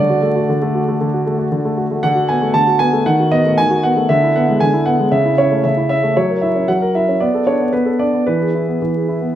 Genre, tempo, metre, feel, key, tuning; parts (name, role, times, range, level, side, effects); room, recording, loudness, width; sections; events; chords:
classical-period piano sonatina; 116 BPM; 4/4; straight; A4 = 440 Hz
warm concert grand piano; solo; 0.0-9.4 s; C#3 to A5; -13 LUFS; equal
wet recital hall reverb, RT60 1.5 s; minimal, uncompressed stereo recording, vinyl crackle; -13 LUFS; side -11 dB against mid
0.0-9.4 A section
0.0 D; 2.0 Bm7/D; 3.1 B7/D#; 4.1 E7/D; 5.1 A/C#; 6.2 F#7; 7.2 Bm7; 8.3 E